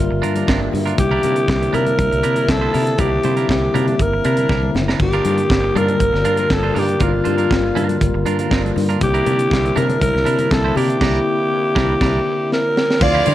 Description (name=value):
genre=disco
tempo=120 BPM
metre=4/4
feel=straight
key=unclear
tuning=A4 = 440 Hz
part: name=breathy alto saxophone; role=melody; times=0.0-13.3 s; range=F4 to D5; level=-19 LUFS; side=left 1 dB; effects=none
part: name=mellow tine electric piano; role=accompaniment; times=0.0-13.3 s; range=D3 to G5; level=-25 LUFS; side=left 3 dB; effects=medium stereo tremolo
part: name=dark French horn section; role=sustained chords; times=0.0-13.3 s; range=C3 to E5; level=-27 LUFS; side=right 1 dB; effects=none
part: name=fingered electric bass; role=bass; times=0.0-13.3 s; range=F#1 to D3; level=-21 LUFS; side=equal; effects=none
part: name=clean electric guitar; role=accompaniment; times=0.1-13.3 s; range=F3 to C5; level=-27 LUFS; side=right 7 dB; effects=none
part: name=tight funk drum kit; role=drums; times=0.2-13.3 s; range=crash cymbal, handclaps, hi-hat, kick drum, snare drum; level=-21 LUFS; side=right 1 dB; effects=none
part: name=congas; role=percussion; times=0.2-13.3 s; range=none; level=-29 LUFS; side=left 7 dB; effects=none
part: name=warm studio violin section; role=second line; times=13.0-13.3 s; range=F4 to F5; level=-19 LUFS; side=right 2 dB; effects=none
room=studio reverb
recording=none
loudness=-14 LUFS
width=side -13 dB against mid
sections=0.0-13.0 A section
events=tine electric piano fill 0.2-1.0, 11.5-13.0; drum fill 4.5-5.0, 12.5-13.0; band accent 11.0-13.0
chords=0.0 Gm7; 1.0 C9; 5.0 Gm7; 9.0 C9